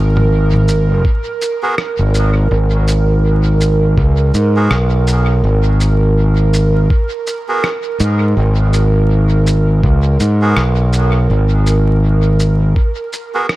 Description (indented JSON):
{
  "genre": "ambient dub",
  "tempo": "82 BPM",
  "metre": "4/4",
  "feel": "swing 59% on 16ths",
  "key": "G# minor",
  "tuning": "A4 = 440 Hz",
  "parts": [
    { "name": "airy breathy pad", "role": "sustained chords", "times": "0.0-13.6 s", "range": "A#4", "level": "-21 LUFS", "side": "right 5 dB", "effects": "chorus" },
    { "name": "growling fingered electric bass", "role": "bass", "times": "0.0-12.7 s", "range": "G#1 to G#2", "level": "-11 LUFS", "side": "equal", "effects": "overdrive, tube saturation" },
    { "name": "lo-fi sampler-style drum kit", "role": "drums", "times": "0.2-13.6 s", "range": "rim click, shaker, toms", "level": "-24 LUFS", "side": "equal", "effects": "dub echo" },
    { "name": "electronic kick drum", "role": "drums", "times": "1.0-12.9 s", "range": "none", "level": "-13 LUFS", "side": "equal", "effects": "none" },
    { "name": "melodica", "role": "stabs", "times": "1.6-13.5 s", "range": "B3 to A#4", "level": "-23 LUFS", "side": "right 1 dB", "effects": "dub echo" }
  ],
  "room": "little or no reverb",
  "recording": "echo-heavy mix, vinyl crackle",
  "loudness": "-11 LUFS",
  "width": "side -17 dB against mid",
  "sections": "0.0-13.6 A section",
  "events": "none",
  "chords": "0.0 G#madd9",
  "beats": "0.32 1.05 1.78 | 2.51 3.25 3.98 4.71 | 5.44 6.17 6.90 7.64 | 8.37 9.10 9.83 10.56 | 11.29 12.03 12.76 13.49"
}